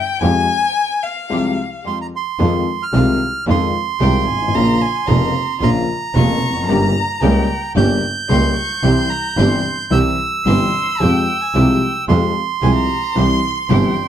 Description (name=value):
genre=tango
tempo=111 BPM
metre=4/4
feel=rubato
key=F harmonic minor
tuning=A4 = 439 Hz
part: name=rich violin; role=second line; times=0.0-14.1 s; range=F5 to Db6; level=-23 LUFS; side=left 6 dB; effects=none
part: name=warm grand piano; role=accompaniment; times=0.2-13.9 s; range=F1 to G4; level=-19 LUFS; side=left 3 dB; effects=none
part: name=rich studio string section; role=stabs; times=0.2-13.9 s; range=Ab3 to G4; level=-26 LUFS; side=equal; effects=none
part: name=clear double bass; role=bass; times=0.2-13.9 s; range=F1 to F2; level=-17 LUFS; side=right 2 dB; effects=none
part: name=bandoneon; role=melody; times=1.9-14.1 s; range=Bb5 to G6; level=-21 LUFS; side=right 7 dB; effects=none
room=light reverb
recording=dark, warm production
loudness=-14 LUFS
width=side -10 dB against mid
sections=0.0-2.4 A section; 2.4-14.1 B section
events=violin solo 0.0-2.4; break 1.3-2.4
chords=0.2 Fmadd9; 2.4 Fm7; 4.5 Bbm; 6.7 Gdim; 8.8 C; 11.0 Fmadd9; 13.2 C